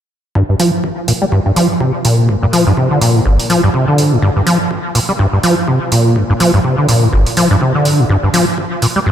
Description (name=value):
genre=acid house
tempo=124 BPM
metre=4/4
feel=swing 57% on 16ths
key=G minor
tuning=A4 = 441 Hz
part: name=acid bass, saw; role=riff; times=0.4-9.1 s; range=G1 to G3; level=-11 LUFS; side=equal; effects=overdrive, analog chorus, cassette tape, sidechain pumping, diffuse ambient delay
part: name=electronic kick drum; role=drums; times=0.4-9.1 s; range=none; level=-25 LUFS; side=equal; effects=overdrive, high-pass filter on kick, high-pass filter on room
part: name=electronic hi-hat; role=drums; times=0.6-8.9 s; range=none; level=-20 LUFS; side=right 2 dB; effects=none
room=wet lush hall reverb, RT60 1.8 s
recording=dreamy mix soaked in reverb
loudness=-10 LUFS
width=side -9 dB against mid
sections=0.4-9.1 A section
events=filter sweep on acid bass 0.4-9.1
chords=none